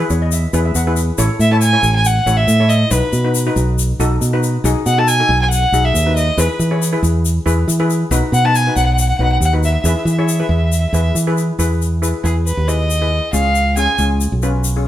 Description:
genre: calypso.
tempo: 138 BPM.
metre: 4/4.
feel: swing 53% on 16ths.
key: E major.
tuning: A4 = 440 Hz.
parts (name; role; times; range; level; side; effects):
steel pan; accompaniment; 0.0-14.9 s; C#4 to F#5; -22 LUFS; left 2 dB; none.
fingered electric bass; bass; 0.0-14.9 s; A1 to E3; -15 LUFS; equal; none.
egg shaker; percussion; 0.1-14.8 s; none; -26 LUFS; left 5 dB; none.
warm violin; melody; 1.4-14.0 s; G#4 to A5; -17 LUFS; equal; none.
room: moderate stone room reverb, RT60 0.9 s.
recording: band playing live in one room.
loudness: -13 LUFS.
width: side -12 dB against mid.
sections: 0.0-11.6 A section; 11.6-14.9 B section.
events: steel pan fill 0.0-1.2; violin solo 11.6-14.9.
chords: 0.0 E; 1.2 A; 2.9 B; 6.4 E; 8.1 B; 9.8 E; 11.6 Emaj7; 13.3 C#7.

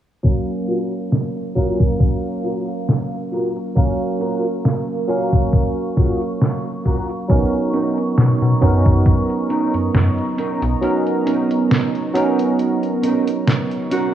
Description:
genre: vaporwave.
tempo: 68 BPM.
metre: 4/4.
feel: swing 54% on 16ths.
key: F# major.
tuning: A4 = 441 Hz.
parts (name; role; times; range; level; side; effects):
barky tine electric piano; accompaniment; 0.2-14.1 s; F#3 to E#5; -20 LUFS; right 1 dB; analog chorus, vintage 12-bit sampler grit, analog delay.
warbly tape-like pad; sustained chords; 1.0-14.1 s; B3 to C#6; -27 LUFS; right 3 dB; chorus, built-in reverb, phaser, vintage 12-bit sampler grit.
detuned 8-bit digital drum machine; drums; 0.2-14.1 s; hi-hat, snare drum; -19 LUFS; equal; studio reverb.
electronic kick drum; drums; 0.2-9.3 s; none; -16 LUFS; equal; studio reverb.
mellow electric guitar; riff; 0.7-14.1 s; C#4 to A#4; -26 LUFS; right 2 dB; ensemble chorus, low-pass filter, analog delay.
slap-like FM bass; bass; 7.3-10.8 s; B1 to B2; -16 LUFS; equal; none.
breathy alto saxophone; melody; 13.9-14.1 s; F#4; -20 LUFS; equal; vintage 12-bit sampler grit.
room: light reverb.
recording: worn, warbling old tape, cassette tape, warbly pitch drift, low-pass filter, studio ambience.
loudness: -16 LUFS.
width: side -11 dB against mid.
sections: 0.2-14.1 A section.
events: filter sweep on clean electric guitar 0.2-14.1; filter sweep 0.2-14.1; kick drops out 10.8-14.1.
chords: 0.2 F#maj7; 7.3 Bmaj9.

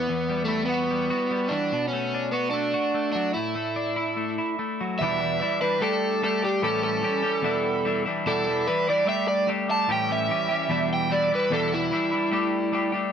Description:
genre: rock.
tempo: 147 BPM.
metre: 4/4.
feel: straight.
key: E dorian.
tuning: A4 = 440 Hz.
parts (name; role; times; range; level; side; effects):
overdriven electric guitar; melody; 0.0-12.9 s; A3 to A5; -25 LUFS; right 2 dB; none.
twelve-string electric guitar; riff; 0.0-13.1 s; E2 to G4; -26 LUFS; left 2 dB; none.
room: moderate studio reverb, RT60 0.7 s.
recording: band playing live in one room.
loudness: -22 LUFS.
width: side -8 dB against mid.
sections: 0.0-5.0 A section; 5.0-13.1 B section.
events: overdriven electric guitar solo 5.0-13.1.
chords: 0.0 Emadd9; 1.7 Bm7; 3.4 Dadd9/A; 5.0 Em7; 5.8 Gsus2; 6.6 A7; 7.4 Em7; 9.1 Gsus2; 9.9 A7; 10.7 Em7; 12.3 Gsus2.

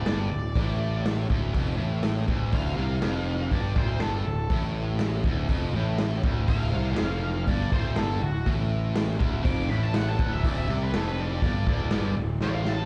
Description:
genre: classic rock.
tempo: 121 BPM.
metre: 4/4.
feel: straight.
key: unclear.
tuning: A4 = 440 Hz.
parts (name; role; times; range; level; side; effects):
octave-fuzz lead guitar; melody; 0.0-12.9 s; F#4 to D6; -38 LUFS; equal; distortion, slapback echo, tape echo.
distorted electric guitar; riff; 0.0-12.9 s; D2 to C3; -33 LUFS; equal; overdrive.
fuzz picked electric bass; bass; 0.0-12.9 s; D1 to C2; -30 LUFS; equal; overdrive.
raw garage drum kit; drums; 0.1-12.8 s; hi-hat, kick drum, snare drum; -31 LUFS; equal; none.
room: light reverb.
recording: live gig heard through the venue's PA, club reverb.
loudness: -26 LUFS.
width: mono.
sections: 0.0-12.9 A section.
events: lead electric guitar solo 0.0-12.9; drum fill 12.4-12.9.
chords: 0.0 D5.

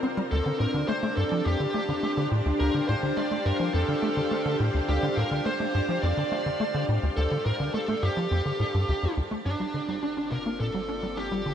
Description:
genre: ambient, sequencer-driven space music.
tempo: 105 BPM.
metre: 4/4.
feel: straight.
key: unclear.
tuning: A4 = 443 Hz.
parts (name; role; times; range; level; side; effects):
string machine, full ensemble; sustained chords; 0.0-11.5 s; Bb3 to F5; -30 LUFS; equal; ensemble chorus.
tight sequencer bass; riff; 0.0-11.5 s; D2 to D4; -28 LUFS; equal; ensemble chorus, tape echo.
smooth overdriven lead guitar; melody; 0.3-11.5 s; D4 to D5; -30 LUFS; right 1 dB; tape echo.
warm sub bass; bass; 9.5-11.5 s; G1; -46 LUFS; equal; none.
room: wet shimmer reverb, RT60 8.5 s.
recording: none.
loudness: -24 LUFS.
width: side -9 dB against mid.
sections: 0.0-9.5 A section; 9.5-11.5 B section.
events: none.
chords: 0.3 Dsus4; 9.5 Gmadd9.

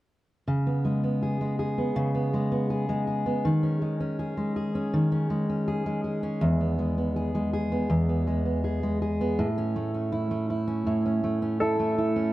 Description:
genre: pop.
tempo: 81 BPM.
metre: 4/4.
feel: straight.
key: C# minor.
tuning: A4 = 438 Hz.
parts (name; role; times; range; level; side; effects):
fingerpicked steel-string acoustic guitar; accompaniment; 0.5-12.3 s; E2 to G#4; -24 LUFS; equal; none.
clear upright piano; melody; 11.6-12.3 s; A4; -26 LUFS; equal; digital delay.
room: light reverb.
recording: none.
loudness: -24 LUFS.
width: side -16 dB against mid.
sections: 0.5-12.3 A section.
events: none.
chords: 0.5 C#5; 3.5 G#sus4/D#; 6.4 E; 9.4 A.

